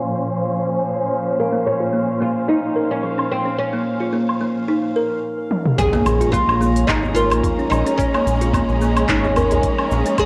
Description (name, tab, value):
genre	organic downtempo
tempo	109 BPM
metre	4/4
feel	swing 54% on 16ths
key	Bb minor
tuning	A4 = 440 Hz
part	oud	melody	0.0-10.3 s	Bb3 to Ab4	-25 LUFS	equal	cassette tape, analog delay
part	warm symphonic string section	sustained chords	0.0-10.3 s	Bb2 to C5	-26 LUFS	equal	sidechain pumping, cassette tape
part	organic electronic drum kit	drums	0.0-10.3 s	handclaps, hi-hat, shaker, toms, woodblock	-26 LUFS	equal	overdrive, low-pass filter on perc, cassette tape, low-pass filter on hats, low-pass filter on toms, low-pass filter on snare, low-pass filter on room
part	drifting glass-harmonics texture	texture	0.0-10.3 s	F5 to Bb5	-36 LUFS	equal	chorus, built-in reverb, cassette tape
part	buzzing kalimba	arpeggios	1.5-10.1 s	F3 to Bb4	-24 LUFS	equal	cassette tape, analog delay
part	electronic kick drum	drums	5.8-10.3 s	none	-26 LUFS	equal	cassette tape
part	impact	sound effects	5.8-8.0 s	none	-30 LUFS	equal	none
part	djembe	percussion	5.9-10.0 s	none	-29 LUFS	equal	none
part	round analog bass	bass	6.1-10.0 s	Ab1 to Bb1	-23 LUFS	equal	tube saturation, sidechain pumping
room	moderate spring reverb, RT60 2.1 s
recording	home recording on cassette, low-pass filter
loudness	-19 LUFS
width	mono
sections	0.0-5.8 A section; 5.8-10.3 B section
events	filter sweep 0.0-5.8; drum fill 5.5; impact 5.8-8.0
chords	0.0 Bbm; 5.8 Bbm7